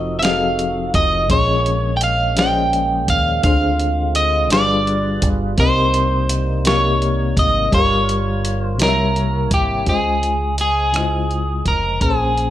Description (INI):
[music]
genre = slow six-eight R&B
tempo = 56 BPM (dotted quarters)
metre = 6/8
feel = straight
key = unclear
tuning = A4 = 441 Hz
[part]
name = electric guitar at the edge of break-up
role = melody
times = 0.0-12.5 s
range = G4 to G5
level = -18 LUFS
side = right 1 dB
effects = slapback echo
[part]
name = FM electric piano with tremolo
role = accompaniment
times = 0.0-12.5 s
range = Bb2 to F5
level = -22 LUFS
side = left 4 dB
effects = none
[part]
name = tonewheel organ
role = sustained chords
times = 0.0-9.9 s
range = C3 to Db5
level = -28 LUFS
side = right 1 dB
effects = overdrive, chorus vibrato, slow rotary speaker
[part]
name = deep dub fingered electric bass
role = bass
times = 0.0-12.5 s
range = F1 to Eb2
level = -22 LUFS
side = right 1 dB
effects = none
[part]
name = dusty soul sampler-style drum kit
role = drums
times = 0.2-12.5 s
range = hi-hat, kick drum, rim click, snare drum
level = -20 LUFS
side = equal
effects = none
[sound]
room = little or no reverb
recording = none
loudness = -15 LUFS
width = side -12 dB against mid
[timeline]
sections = 0.0-9.9 A section; 9.9-12.5 B section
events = none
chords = 0.0 F7b9; 1.3 Bbm11; 3.4 Dm7b5; 4.5 G7b9; 5.6 Cm7; 7.7 Gm7b5; 8.8 C7b9; 9.9 Dbmaj9